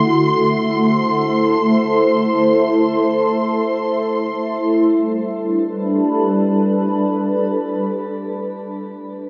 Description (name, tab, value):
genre	ambient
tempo	free time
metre	none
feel	none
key	G major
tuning	A4 = 442 Hz
part	shimmering ambient pad	sustained chords	0.0-8.1 s	G3 to C5	-18 LUFS	equal	chorus, built-in reverb, phaser, shimmer reverb
part	muted studio violin section	texture	0.0-4.8 s	C6	-25 LUFS	equal	shimmer reverb
room	wet cathedral reverb, RT60 7.0 s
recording	dark, warm production, nothing above 7.5 kHz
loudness	-17 LUFS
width	mono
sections	0.0-4.8 A section; 4.8-7.3 B section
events	none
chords	0.0 Am; 4.8 G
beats	free time